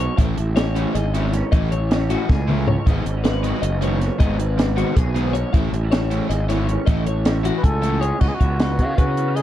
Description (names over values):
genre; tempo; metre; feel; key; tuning
math rock and midwest emo; 314 BPM (eighths); 7/8; straight; A lydian; A4 = 439 Hz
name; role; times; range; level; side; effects
electric guitar through a small old amp; accompaniment; 0.0-9.4 s; G#2 to G#4; -29 LUFS; right 6 dB; ensemble chorus
twelve-string electric guitar; arpeggios; 0.0-9.4 s; F#4 to G#5; -29 LUFS; left 8 dB; none
overdriven semi-hollow guitar; riff; 0.0-8.1 s; D#3 to E4; -27 LUFS; left 1 dB; none
fuzz fingered electric bass; bass; 0.0-9.4 s; F#1 to C#3; -21 LUFS; equal; overdrive
compact cocktail drum kit; drums; 0.2-9.4 s; crash cymbal, hi-hat, kick drum, snare drum, toms; -20 LUFS; equal; none
breathy trumpet; melody; 7.6-9.4 s; F#4 to B4; -25 LUFS; left 1 dB; none
room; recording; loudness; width
light reverb; dark, warm production; -17 LUFS; side -12 dB against mid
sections
0.0-8.2 A section; 8.2-9.4 B section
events
drum fill 2.3-2.9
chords
0.2 Amaj7; 2.9 G#m7; 5.5 Amaj7; 8.2 C#m11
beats
0.00 | 0.19 0.38 0.57 0.76 0.95 1.14 1.34 | 1.53 1.72 1.91 2.10 2.29 2.48 2.67 | 2.87 3.06 3.25 3.44 3.63 3.82 4.01 | 4.20 4.39 4.58 4.78 4.97 5.16 5.35 | 5.54 5.73 5.92 6.11 6.30 6.50 6.69 | 6.88 7.07 7.26 7.45 7.64 7.83 8.03 | 8.22 8.41 8.60 8.79 8.98 9.18 9.37